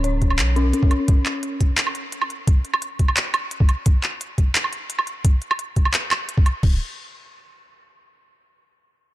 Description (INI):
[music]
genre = half-time drum and bass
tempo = 173 BPM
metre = 4/4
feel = half-time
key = unclear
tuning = A4 = 440 Hz
[part]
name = dark detuned synth bell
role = arpeggios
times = 0.0-1.1 s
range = C#4 to C#5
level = -26 LUFS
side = left 2 dB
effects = chorus, digital delay
[part]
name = long sustained 808-style bass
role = bass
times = 0.0-0.7, 6.6-6.8 s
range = C#1 to B1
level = -20 LUFS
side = equal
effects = none
[part]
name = organic electronic drum kit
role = drums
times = 0.0-6.7 s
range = crash cymbal, handclaps, hi-hat, woodblock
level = -23 LUFS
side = right 2 dB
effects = none
[part]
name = electronic kick drum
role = drums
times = 0.2-6.7 s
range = none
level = -16 LUFS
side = equal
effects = overdrive
[sound]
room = light reverb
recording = dark, warm production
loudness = -18 LUFS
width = side -16 dB against mid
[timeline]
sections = 0.0-6.6 A section; 6.6-8.0 B section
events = none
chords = none